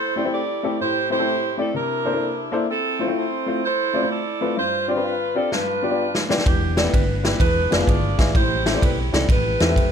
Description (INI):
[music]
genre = uptempo gospel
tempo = 127 BPM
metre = 4/4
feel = swing 66% on 8ths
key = C major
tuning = A4 = 440 Hz
[part]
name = mellow saxophone section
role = melody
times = 0.0-9.9 s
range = B3 to D5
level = -23 LUFS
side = right 2 dB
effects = none
[part]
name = warm upright piano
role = accompaniment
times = 0.2-9.8 s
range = G2 to F5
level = -24 LUFS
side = left 3 dB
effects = none
[part]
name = swinging big-band drum kit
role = drums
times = 5.5-9.9 s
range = kick drum, ride cymbal, snare drum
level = -20 LUFS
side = equal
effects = none
[part]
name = hollow-body short-scale fingered electric bass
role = bass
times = 6.5-9.9 s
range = E1 to E2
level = -23 LUFS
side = equal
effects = none
[sound]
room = little or no reverb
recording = none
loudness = -18 LUFS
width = side -7 dB against mid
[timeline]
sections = 0.0-9.9 A section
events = drum fill 5.5-6.5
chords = 0.0 C6; 1.7 C13; 2.7 Fmaj7; 4.6 G7sus4; 5.5 G7; 6.5 Em7; 7.4 E7b9; 8.3 Am7